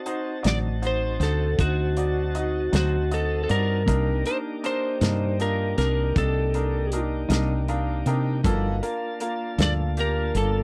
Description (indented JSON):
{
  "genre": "slow blues",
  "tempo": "52 BPM (dotted quarters)",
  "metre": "12/8",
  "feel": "straight",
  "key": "unclear",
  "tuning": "A4 = 440 Hz",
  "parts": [
    { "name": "tonewheel organ", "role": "sustained chords", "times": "0.0-10.6 s", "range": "Bb3 to A5", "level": "-36 LUFS", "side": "equal", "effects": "slow rotary speaker" },
    { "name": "bright upright piano", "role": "accompaniment", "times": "0.1-10.6 s", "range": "Bb3 to G5", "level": "-34 LUFS", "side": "equal", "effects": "none" },
    { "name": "warm soul drum kit", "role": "drums", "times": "0.1-10.5 s", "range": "hi-hat, kick drum, snare drum", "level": "-29 LUFS", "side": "equal", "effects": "none" },
    { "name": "woody fretless electric bass", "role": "bass", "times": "0.4-10.6 s", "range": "G1 to C3", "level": "-27 LUFS", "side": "equal", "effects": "none" },
    { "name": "lightly driven lead guitar", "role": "melody", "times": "0.5-10.6 s", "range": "F#4 to D5", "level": "-29 LUFS", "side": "equal", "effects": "none" },
    { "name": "clean electric guitar", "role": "accompaniment", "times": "0.5-9.8 s", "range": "G2 to Eb4", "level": "-31 LUFS", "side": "equal", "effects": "harmonic tremolo" }
  ],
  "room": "little or no reverb",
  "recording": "dry, close 1970s-style studio recording",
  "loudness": "-24 LUFS",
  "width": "mono",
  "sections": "0.0-10.6 A section",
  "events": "upright piano fill 7.3-8.4",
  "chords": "0.0 D7b9; 3.9 Cm7; 8.4 Gm7",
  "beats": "0.44 1.59 2.73 | 3.87 5.02 6.16 7.30 | 8.45 9.59"
}